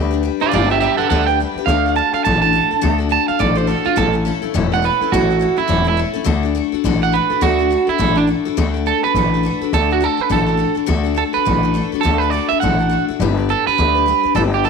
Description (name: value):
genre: rock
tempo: 209 BPM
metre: 4/4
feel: swing 61% on 8ths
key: D major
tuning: A4 = 440 Hz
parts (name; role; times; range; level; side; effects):
- picked steel-string acoustic guitar; accompaniment; 0.0-14.7 s; A2 to B4; -21 LUFS; left 17 dB; none
- upright bass; bass; 0.0-14.7 s; E1 to D2; -19 LUFS; left 1 dB; none
- electric guitar at the edge of break-up; melody; 0.4-14.7 s; D4 to A5; -17 LUFS; right 10 dB; tape echo
room: light reverb, small room ambience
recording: 1960s-style stereo with parts hard left and right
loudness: -14 LUFS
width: side -5 dB against mid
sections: 0.0-8.6 A section; 8.6-14.7 B section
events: clean electric guitar solo 0.0-8.6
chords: 0.0 G; 1.7 D; 4.0 A; 6.3 D; 13.2 G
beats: 0.25 | 0.53 0.82 1.11 1.39 | 1.68 1.97 2.25 2.54 | 2.83 3.12 3.40 3.69 | 3.98 4.26 4.55 4.84 | 5.12 5.41 5.70 5.99 | 6.27 6.56 6.85 7.14 | 7.42 7.71 8.00 8.29 | 8.57 8.86 9.15 9.44 | 9.73 10.02 10.31 10.60 | 10.88 11.17 11.46 11.75 | 12.04 12.33 12.62 12.91 | 13.20 13.49 13.78 14.07 | 14.36 14.65